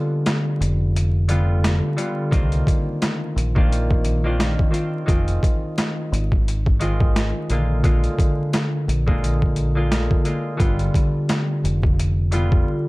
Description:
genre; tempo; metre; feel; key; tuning
hip hop, boom-bap hip-hop; 87 BPM; 4/4; swing 58% on 16ths; unclear; A4 = 439 Hz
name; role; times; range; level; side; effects
concert harp; accompaniment; 0.0-12.9 s; D3 to F4; -23 LUFS; equal; cassette tape, high-pass filter, low-pass filter
boom bap sampler-style drum kit; drums; 0.3-12.7 s; hi-hat, kick drum, snare drum; -20 LUFS; equal; overdrive
deep dub fingered electric bass; bass; 0.6-12.6 s; F1 to C2; -21 LUFS; equal; none
room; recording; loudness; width
light reverb; dark, warm production, vinyl crackle; -18 LUFS; side -22 dB against mid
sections
0.0-12.9 A section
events
break 0.0-2.3, 12.7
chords
0.0 G7; 2.3 Cm11; 5.1 Fm7; 7.5 Bb7; 10.6 G7

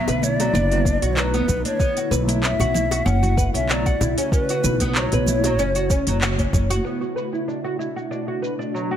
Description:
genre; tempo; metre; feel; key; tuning
organic downtempo; 95 BPM; 4/4; swing 54% on 16ths; B minor; A4 = 439 Hz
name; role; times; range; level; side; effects
breathy ney; melody; 0.0-6.5 s; B4 to F#5; -25 LUFS; left 1 dB; tape echo
ethereal airy pad; sustained chords; 0.0-9.0 s; B2 to F#4; -28 LUFS; equal; ensemble chorus, built-in reverb, sidechain pumping
oud; arpeggios; 0.0-9.0 s; F#3 to B4; -26 LUFS; right 1 dB; low-pass filter, tape echo
upright bass; bass; 0.1-6.8 s; F#1 to B1; -22 LUFS; equal; none
organic electronic drum kit; drums; 0.1-8.9 s; handclaps, hi-hat, shaker; -26 LUFS; right 1 dB; low-pass filter on perc, low-pass filter on snare, low-pass filter on hats
bongos and congas; percussion; 0.1-6.8 s; none; -29 LUFS; left 2 dB; none
electronic kick drum; drums; 0.9-6.7 s; none; -22 LUFS; equal; none
room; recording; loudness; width
light reverb, small room ambience; none; -18 LUFS; side -10 dB against mid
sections
0.0-6.9 A section; 6.9-9.0 B section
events
band accent 6.2-6.5; filter sweep on drum 6.9-9.0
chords
0.0 Bm7; 1.8 A6; 6.9 Bm7

